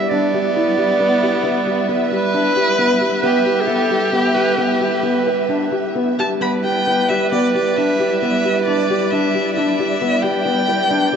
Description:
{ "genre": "contemporary instrumental, chamber music in an uneven meter", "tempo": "134 BPM", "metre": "7/4", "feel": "straight", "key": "E minor", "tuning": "A4 = 439 Hz", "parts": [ { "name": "bright clarinet", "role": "second line", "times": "0.0-11.0 s", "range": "G4 to E5", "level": "-21 LUFS", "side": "right 4 dB", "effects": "none" }, { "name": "dark studio string section", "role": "sustained chords", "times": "0.0-11.2 s", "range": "G3 to E5", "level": "-24 LUFS", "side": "right 1 dB", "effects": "none" }, { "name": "felt-muted upright piano", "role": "arpeggios", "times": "0.0-11.2 s", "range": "B3 to B4", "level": "-20 LUFS", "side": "left 2 dB", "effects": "none" }, { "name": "rich violin", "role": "melody", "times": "0.1-11.2 s", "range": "B3 to B5", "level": "-20 LUFS", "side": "equal", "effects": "none" } ], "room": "wet cathedral reverb, RT60 6.5 s", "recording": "in a vast, echoing space, nothing above 8.0 kHz", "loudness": "-15 LUFS", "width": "side -7 dB against mid", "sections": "0.0-6.4 A section; 6.4-11.2 B section", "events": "none", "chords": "0.0 Em7", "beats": "| 0.11 0.55 1.00 1.44 1.89 2.33 2.78 | 3.23 3.68 4.13 4.58 5.03 5.49 5.95 | 6.41 6.87 7.32 7.77 8.22 8.67 9.11 | 9.56 10.01 10.45 10.90" }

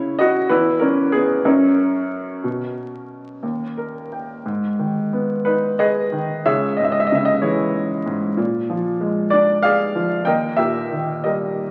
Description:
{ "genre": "classical, lyrical solo piano", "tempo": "58-65 BPM (dotted quarters)", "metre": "6/8", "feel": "rubato", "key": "G# harmonic minor from 4.4 s", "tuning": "A4 = 440 Hz", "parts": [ { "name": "clear baby grand piano", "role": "solo", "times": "0.0-11.7 s", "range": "C#2 to G5", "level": "-20 LUFS", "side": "equal", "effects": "none" } ], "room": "wet recital hall reverb, RT60 1.5 s", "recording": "very old 78 rpm record, vinyl crackle", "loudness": "-19 LUFS", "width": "mono", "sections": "0.0-4.4 A section; 4.4-11.7 B section", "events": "grand piano fill 3.4-4.4", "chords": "0.5 E5; 1.5 F#; 2.4 Bsus2; 3.4 D#; 4.4 G#m; 6.5 C#m; 8.4 A#7; 10.3 D#", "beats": "| 0.49 1.45 | 2.43 3.43 | 4.44 5.45 | 6.45 7.42 | 8.37 9.32 | 10.26 11.24" }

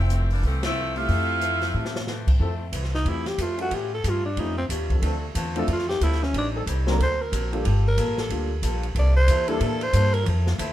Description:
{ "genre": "jazz, big band swing", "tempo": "183 BPM", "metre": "4/4", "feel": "swing 62% on 8ths", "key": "F major", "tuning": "A4 = 441 Hz", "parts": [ { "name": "edgy saxophone section", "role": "melody", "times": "0.0-2.1 s", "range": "E3 to F4", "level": "-26 LUFS", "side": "equal", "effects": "none" }, { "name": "upright bass", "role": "bass", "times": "0.0-10.7 s", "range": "F1 to A2", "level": "-24 LUFS", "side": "equal", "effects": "none" }, { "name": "picked acoustic archtop guitar", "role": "accompaniment", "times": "0.1-10.7 s", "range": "F2 to A4", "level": "-34 LUFS", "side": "left 3 dB", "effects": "none" }, { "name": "open jazz drum kit", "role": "drums", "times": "0.1-10.7 s", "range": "crash cymbal, hi-hat, kick drum, ride cymbal, snare drum", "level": "-30 LUFS", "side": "equal", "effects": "none" }, { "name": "warm grand piano", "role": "accompaniment", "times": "1.0-9.6 s", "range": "Gb3 to E5", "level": "-32 LUFS", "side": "left 1 dB", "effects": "none" }, { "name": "mellow trombone section", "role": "sustained chords", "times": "2.4-7.0, 9.5-9.9 s", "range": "E3 to Bb4", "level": "-34 LUFS", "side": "equal", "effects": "none" }, { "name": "growling alto saxophone", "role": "melody", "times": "3.0-10.3 s", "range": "B#3 to D5", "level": "-27 LUFS", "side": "equal", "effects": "none" } ], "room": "light reverb", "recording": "minimal, uncompressed stereo recording", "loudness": "-21 LUFS", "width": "side -13 dB against mid", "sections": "0.0-2.4 A section; 2.4-10.7 B section", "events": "band accent 0.6; drum fill 1.7-2.1; alto saxophone solo 2.4-10.7", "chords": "0.0 Fmaj7; 3.7 A7alt; 5.0 Dm7; 6.3 Am7b5; 7.0 D7b13; 7.7 Gm9; 9.0 C13", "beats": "0.10 0.43 0.76 | 1.09 1.42 1.75 2.08 | 2.40 2.73 3.06 3.39 | 3.72 4.04 4.37 4.70 | 5.03 5.36 5.68 6.01 | 6.34 6.67 7.00 7.32 | 7.65 7.98 8.31 8.63 | 8.96 9.29 9.61 9.94 | 10.27 10.59" }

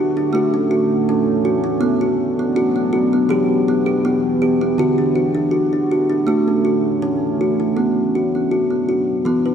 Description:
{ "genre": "world meditative, meditative tuned percussion", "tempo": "81 BPM", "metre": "4/4", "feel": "straight", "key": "B minor", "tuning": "A4 = 445 Hz", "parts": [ { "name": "deep dark ambient pad", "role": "sustained chords", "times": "0.0-9.5 s", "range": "A3 to B3", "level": "-21 LUFS", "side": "right 3 dB", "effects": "chorus, built-in reverb" }, { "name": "kalimba", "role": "arpeggios", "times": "0.0-9.5 s", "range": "D3 to B4", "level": "-16 LUFS", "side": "left 1 dB", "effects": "none" } ], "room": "wet lush hall reverb, RT60 2.0 s, small room ambience", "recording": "dark, warm production", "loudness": "-15 LUFS", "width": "side -8 dB against mid", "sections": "0.0-7.8 A section; 7.8-9.5 B section", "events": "none", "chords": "0.3 A; 1.8 Bm; 3.3 Em; 4.8 D; 6.3 A; 7.8 Bm", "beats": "0.32 1.07 | 1.81 2.55 3.30 4.04 | 4.79 5.53 6.27 7.02 | 7.76 8.51 9.25" }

